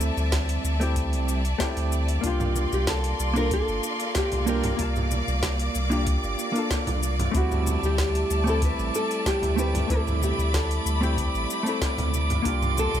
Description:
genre	sunset chillout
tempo	94 BPM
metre	4/4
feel	straight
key	unclear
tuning	A4 = 440 Hz
part	nylon-string guitar	melody	0.0-13.0 s	F4 to B4	-30 LUFS	equal	ping-pong delay
part	hollow-body jazz guitar	accompaniment	0.0-13.0 s	G3 to A5	-30 LUFS	moving between left 3 dB and right 3 dB	auto-pan, digital delay
part	bright studio string section	sustained chords	0.0-13.0 s	G3 to D6	-31 LUFS	left 1 dB	none
part	warm sub bass	bass	0.0-13.0 s	G1 to D2	-26 LUFS	equal	none
part	smooth R&B drum kit	drums	0.0-13.0 s	hi-hat, shaker, snare drum	-32 LUFS	left 1 dB	none
part	electronic kick drum	drums	0.3-12.6 s	none	-29 LUFS	equal	none
part	drifting glass-harmonics texture	texture	3.0-13.0 s	D6	-35 LUFS	right 5 dB	chorus, built-in reverb
part	congas	percussion	2.4-12.9 s	none	-34 LUFS	right 2 dB	none
room	little or no reverb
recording	none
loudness	-22 LUFS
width	side -10 dB against mid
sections	0.0-13.0 A section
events	none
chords	0.0 D9sus4; 2.2 C9sus4; 7.3 D9sus4; 12.5 C9sus4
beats	0.33 0.96 1.60 | 2.24 2.88 3.52 4.16 | 4.79 5.43 6.07 6.71 | 7.35 7.99 8.62 9.26 | 9.90 10.54 11.18 11.81 | 12.45

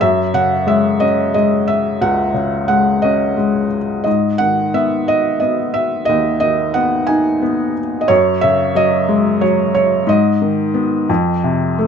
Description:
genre	classical, lyrical solo piano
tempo	60 BPM (dotted quarters)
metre	6/8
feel	rubato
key	unclear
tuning	A4 = 440 Hz
part	felt-muted upright piano	solo	0.0-11.9 s	C#2 to G#5	-13 LUFS	equal	none
room	moderate studio reverb, RT60 0.7 s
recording	none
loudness	-13 LUFS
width	side -7 dB against mid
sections	0.0-11.9 A section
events	none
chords	0.0 F#sus2; 4.1 G#m; 8.1 F#sus2; 10.1 G#m; 11.1 F7(no3)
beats	| 0.01 1.01 | 2.02 3.04 | 4.06 5.08 | 6.09 7.09 | 8.10 9.09 | 10.08 11.09

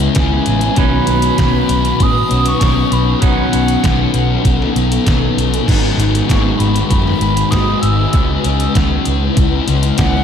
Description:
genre	rock, shoegaze and dream pop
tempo	98 BPM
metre	4/4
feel	straight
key	unclear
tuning	A4 = 440 Hz
part	ethereal airy pad	sustained chords	0.0-10.2 s	F#3 to B4	-21 LUFS	equal	ensemble chorus, built-in reverb
part	clean electric guitar	riff	0.0-10.2 s	G#2 to E4	-24 LUFS	right 6 dB	reverse reverb
part	thick fuzz guitar	riff	0.0-10.2 s	G#2 to C#4	-17 LUFS	left 7 dB	distortion, wide subtle chorus
part	vintage muted picked electric bass	bass	0.0-10.2 s	G#1 to A2	-17 LUFS	equal	none
part	detuned 8-bit digital drum machine	drums	0.0-10.1 s	crash cymbal, hi-hat, kick drum, snare drum	-18 LUFS	equal	none
part	mellow concert flute	melody	0.2-10.2 s	F#5 to E6	-21 LUFS	right 2 dB	analog delay
room	wet lush hall reverb, RT60 2.8 s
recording	dreamy mix soaked in reverb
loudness	-11 LUFS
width	side -8 dB against mid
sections	0.0-10.2 A section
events	none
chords	0.0 C#m7; 0.8 Badd9; 5.7 G#m7; 8.1 C#m7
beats	0.15 | 0.76 1.38 1.99 2.60 | 3.22 3.83 4.45 5.06 | 5.68 6.29 6.91 7.52 | 8.14 8.75 9.37 9.98

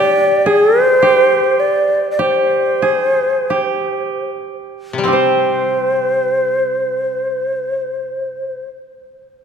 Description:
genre	japanese traditional, Japanese chamber music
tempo	35-56 BPM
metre	2/4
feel	rubato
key	unclear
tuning	A4 = 440 Hz
part	breathy hollow shakuhachi	melody	0.0-8.7 s	C5 to D5	-14 LUFS	equal	none
part	koto	second line	0.0-8.8 s	C4 to C5	-19 LUFS	right 5 dB	none
part	koto	accompaniment	0.0-1.0, 4.9-8.7 s	C3 to G4	-23 LUFS	left 8 dB	none
room	wet church reverb, RT60 2.8 s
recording	none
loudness	-13 LUFS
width	side -7 dB against mid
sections	0.0-5.1 A section; 5.1-8.4 B section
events	slowing down 0.0-5.1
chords	none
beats	1.03 | 2.19 3.49 | 5.05 6.74

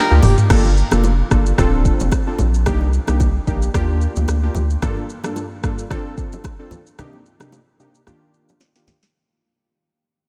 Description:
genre	afrobeats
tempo	111 BPM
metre	4/4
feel	swing 55% on 16ths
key	G minor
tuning	A4 = 439 Hz
part	warm analog keys	accompaniment	0.0-9.0 s	G2 to A4	-26 LUFS	equal	chorus
part	warm sub bass	bass	0.1-4.8 s	D1 to Eb2	-19 LUFS	equal	none
part	afro-pop drum kit	drums	0.2-9.1 s	crash cymbal, hi-hat, kick drum, rim click, shaker, snare drum, toms	-22 LUFS	equal	vintage 12-bit sampler grit
part	bongos and congas	percussion	0.2-9.0 s	none	-30 LUFS	equal	none
room	light reverb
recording	none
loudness	-18 LUFS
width	mono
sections	0.5-9.1 A section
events	fade-out 0.5-9.1; drum fill 8.6-9.1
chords	0.0 Ebmaj7; 0.5 Gm7; 1.6 Dm7; 2.7 Cm7; 3.7 Ebmaj7; 4.8 Gm7; 5.9 Dm7; 7.0 Cm7; 8.1 Ebmaj7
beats	| 0.50 1.04 1.58 2.12 | 2.66 3.20 3.74 4.28 | 4.82 5.37 5.91 6.45 | 6.99 7.53 8.07 8.61

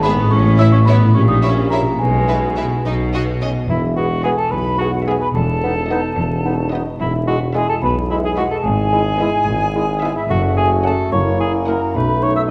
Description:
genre	cinematic, playful, whimsical film cue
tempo	72 BPM (dotted quarters)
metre	6/8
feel	straight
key	E major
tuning	A4 = 440 Hz
part	large celesta	melody	0.0-12.5 s	E5 to E6	-26 LUFS	equal	none
part	rich chamber violin section	melody	0.0-11.9 s	D#5 to F#5	-34 LUFS	equal	none
part	rich studio violin section	second line	0.0-11.9 s	B3 to C#5	-30 LUFS	equal	none
part	rich chamber viola section	accompaniment	0.0-11.9 s	F#3 to E4	-29 LUFS	equal	none
part	dark French horn section	sustained chords	0.0-12.5 s	G#3 to B4	-32 LUFS	equal	none
part	concert harp	arpeggios	0.0-12.5 s	E2 to B4	-25 LUFS	equal	none
part	clear chamber cello section	bass	0.0-12.5 s	E2 to B2	-25 LUFS	equal	none
part	rich chamber double bass section	bass	0.0-12.5 s	E1 to B1	-24 LUFS	equal	none
part	warm tuba	bass	0.0-12.5 s	E1 to B1	-26 LUFS	equal	none
part	mellow cor anglais	second line	3.7-12.5 s	E4 to E5	-25 LUFS	equal	none
part	silver concert flute	second line	3.7-12.4 s	E5 to E6	-29 LUFS	equal	none
part	mellow clarinet	second line	4.0-12.5 s	D#4 to G#4	-29 LUFS	equal	none
part	warm bassoon	accompaniment	4.0-12.5 s	G#3 to B3	-28 LUFS	equal	none
room	wet scoring stage reverb, RT60 1.7 s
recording	vinyl crackle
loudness	-17 LUFS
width	mono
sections	0.0-3.7 A section; 3.7-12.5 B section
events	none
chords	0.3 A; 1.1 A#dim7; 2.0 E/B; 2.8 B; 3.7 E; 5.4 B7/E; 7.0 E; 8.6 E/G#; 10.3 F#m; 11.1 F#7; 12.0 B7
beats	| 0.32 1.15 | 2.00 2.84 | 3.69 4.52 | 5.35 6.18 | 7.00 7.83 | 8.65 9.47 | 10.30 11.12 | 11.95

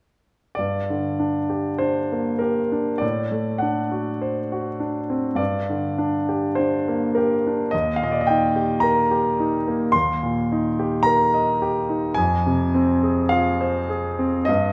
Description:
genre	classical, romantic nocturne for solo piano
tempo	49-55 BPM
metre	4/4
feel	rubato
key	G minor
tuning	A4 = 444 Hz
part	clear grand piano	solo	0.5-14.7 s	Eb2 to C6	-22 LUFS	equal	none
room	wet large studio reverb, RT60 1.4 s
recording	none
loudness	-22 LUFS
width	mono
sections	0.6-14.7 A section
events	none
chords	0.6 Gm; 3.0 D7/A; 5.4 Gm; 7.7 Eb; 12.2 Fm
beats	| 0.58 1.81 3.02 4.22 | 5.40 6.58 7.73 8.83 | 9.94 11.05 12.17 13.32 | 14.48

